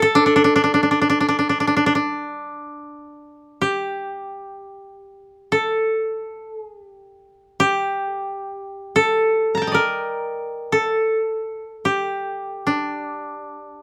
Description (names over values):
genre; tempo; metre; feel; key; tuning
japanese traditional, Japanese chamber music; free time; none; none; D miyako bushi; A4 = 440 Hz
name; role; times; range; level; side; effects
koto; solo; 0.0-13.8 s; D4 to Bb5; -21 LUFS; equal; none
room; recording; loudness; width
light reverb; none; -21 LUFS; mono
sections
0.0-2.4 A section; 2.4-13.8 A section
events
none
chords
none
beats
free time